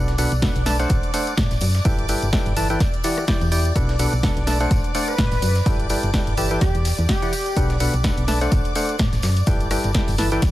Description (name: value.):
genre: piano house.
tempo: 126 BPM.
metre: 4/4.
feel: swing 56% on 16ths.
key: unclear.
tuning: A4 = 439 Hz.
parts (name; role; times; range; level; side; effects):
string machine, violins; sustained chords; 0.0-10.5 s; D5 to D6; -32 LUFS; equal; ensemble chorus, sidechain pumping.
percussive organ stab; riff; 0.0-10.4 s; B2 to A5; -24 LUFS; equal; chorus, sidechain pumping, digital delay.
solid FM bass; bass; 0.0-10.5 s; G1 to A2; -22 LUFS; equal; sidechain pumping.
dusty soul sampler-style drum kit; drums; 0.1-10.5 s; hi-hat, snare drum; -37 LUFS; equal; none.
house drum kit; drums; 0.1-10.5 s; hi-hat, rim click, snare drum; -28 LUFS; equal; none.
tambourine; percussion; 0.2-10.5 s; none; -35 LUFS; left 1 dB; none.
electronic kick drum; drums; 0.4-10.5 s; none; -22 LUFS; equal; none.
airy dreamy lead; melody; 4.9-7.6 s; G4 to D5; -29 LUFS; equal; chorus, digital delay.
room: little or no reverb.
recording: none.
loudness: -18 LUFS.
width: side -15 dB against mid.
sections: 0.0-10.5 A section.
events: none.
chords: 0.0 Bm7; 0.9 D7/A; 1.9 G69; 2.8 Em9; 3.8 Bm7; 4.7 D7/A; 5.7 G69; 6.6 Em9; 7.6 Bm7; 8.5 D7/A; 9.5 G69.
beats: 0.42 0.90 1.38 | 1.85 2.33 2.80 3.28 | 3.76 4.23 4.71 5.18 | 5.66 6.14 6.61 7.09 | 7.57 8.04 8.52 8.99 | 9.47 9.95 10.42.